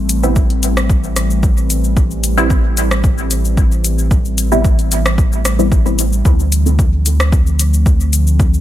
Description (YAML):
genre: dub techno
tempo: 112 BPM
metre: 4/4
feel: straight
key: D dorian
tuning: A4 = 440 Hz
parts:
  - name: warbly tape-like pad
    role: sustained chords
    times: 0.0-8.6 s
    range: D3 to C4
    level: -22 LUFS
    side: equal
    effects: chorus, built-in reverb, phaser, sidechain pumping
  - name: soft dub sub bass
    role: bass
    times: 0.0-8.6 s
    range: A1 to D2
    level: -15 LUFS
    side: equal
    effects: sidechain pumping
  - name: punchy analog drum machine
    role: drums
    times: 0.1-8.6 s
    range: hi-hat, rim click, shaker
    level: -21 LUFS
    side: left 2 dB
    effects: overdrive
  - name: filtered dub chord stab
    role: stabs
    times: 0.2-6.8 s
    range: G3 to A4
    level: -19 LUFS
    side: equal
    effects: phaser, sidechain pumping, dub echo
  - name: electronic kick drum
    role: drums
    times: 0.4-8.5 s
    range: none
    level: -13 LUFS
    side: equal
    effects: none
room: digital ambience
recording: none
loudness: -11 LUFS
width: side -13 dB against mid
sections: 0.0-6.3 A section; 6.3-8.6 A section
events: none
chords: 0.0 Am7; 6.3 Dm7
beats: 0.36 0.90 1.43 | 1.97 2.50 3.04 3.58 | 4.11 4.65 5.18 5.72 | 6.25 6.79 7.33 7.86 | 8.40